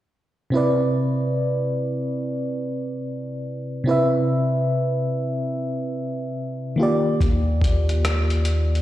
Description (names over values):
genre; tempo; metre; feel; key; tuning
R&B, neo-soul; 72 BPM; 4/4; swing 64% on 16ths; C major; A4 = 441 Hz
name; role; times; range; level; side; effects
FM electric piano with auto-pan; accompaniment; 0.5-8.8 s; C3 to E5; -22 LUFS; equal; slapback echo
rubbery square bass; bass; 7.2-8.8 s; Eb2; -20 LUFS; equal; none
boom bap sampler-style drum kit; drums; 7.2-8.8 s; hi-hat, kick drum, rim click; -23 LUFS; equal; none
room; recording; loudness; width
light reverb, digital ambience; live gig heard through the venue's PA, recital hall reverb; -20 LUFS; side -14 dB against mid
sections
0.5-8.8 A section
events
none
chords
0.5 Cmaj9; 6.8 Ebmaj9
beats
| 0.54 1.37 2.20 3.04 | 3.87 4.70 5.54 6.37 | 7.20 8.04